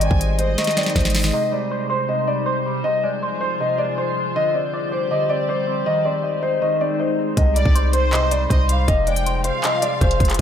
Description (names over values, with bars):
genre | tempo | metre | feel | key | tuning
hip hop, trap | 159 BPM | 4/4 | half-time | C minor | A4 = 440 Hz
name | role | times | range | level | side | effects
dark concert grand piano | melody | 0.0-10.4 s | C5 to Eb5 | -22 LUFS | left 1 dB | diffuse ambient delay
rich studio violin section | second line | 0.0-1.3, 7.6-10.4 s | C5 to Ab5 | -28 LUFS | equal | diffuse ambient delay
electric guitar with an envelope filter | accompaniment | 0.0-10.4 s | C3 to Eb5 | -26 LUFS | equal | analog chorus
glassy FM pad | sustained chords | 0.0-10.4 s | C3 to D5 | -26 LUFS | left 1 dB | ensemble chorus, built-in reverb
clean 808-style bass | bass | 0.0-1.3, 7.4-10.4 s | F1 to C2 | -19 LUFS | equal | none
trap drum kit | drums | 0.0-1.3, 7.4-10.4 s | handclaps, hi-hat, kick drum, snare drum | -21 LUFS | equal | none
room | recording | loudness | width
moderate plate reverb, RT60 1.3 s | dreamy mix soaked in reverb | -17 LUFS | side -9 dB against mid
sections
0.0-1.3 A section; 1.3-10.4 A section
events
drum fill 0.6-1.3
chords
0.0 Ab; 1.3 Cm; 2.8 Fm; 4.4 Gsus4; 5.9 Ab; 7.4 Cm; 8.9 Fm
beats
0.20 0.58 0.96 | 1.33 1.71 2.09 2.47 | 2.84 3.22 3.60 3.98 | 4.35 4.73 5.11 5.49 | 5.86 6.24 6.62 6.99 | 7.37 7.75 8.13 8.50 | 8.88 9.26 9.64 10.01 | 10.39